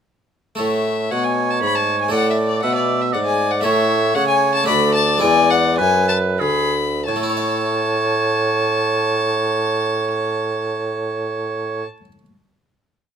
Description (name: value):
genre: classical, baroque-style sonata movement with continuo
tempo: 89-119 BPM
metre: 3/4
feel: straight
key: A major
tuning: A4 = 440 Hz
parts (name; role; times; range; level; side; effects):
- warm violin; melody; 0.6-11.8 s; D5 to B5; -21 LUFS; left 7 dB; none
- harpsichord; accompaniment; 0.6-12.3 s; D2 to E5; -25 LUFS; left 1 dB; none
- dark bassoon; bass; 0.6-11.8 s; D2 to C#3; -21 LUFS; right 1 dB; none
- warm oboe; second line; 1.1-11.8 s; G#4 to E5; -22 LUFS; right 5 dB; none
room: light reverb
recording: none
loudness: -16 LUFS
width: side -7 dB against mid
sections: 0.6-7.1 A section; 7.1-11.1 final chord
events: slowing down 2.9-7.1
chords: 0.6 A; 2.1 D5/A; 3.6 A; 4.7 D; 5.2 E7; 7.1 A